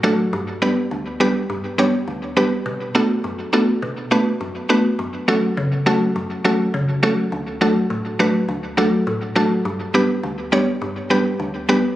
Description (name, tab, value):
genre	dancehall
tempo	103 BPM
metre	4/4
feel	straight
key	unclear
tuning	A4 = 439 Hz
part	mallet-like synth pluck	solo	0.0-11.8 s	D2 to C#5	-17 LUFS	equal	chorus, tape echo
room	moderate lush hall reverb, RT60 2.4 s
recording	recorded on a phone in the room, club reverb, compression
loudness	-17 LUFS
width	side -14 dB against mid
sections	0.0-12.0 A section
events	none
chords	0.3 G; 2.7 Bm7; 5.0 F#m; 7.3 D; 9.7 G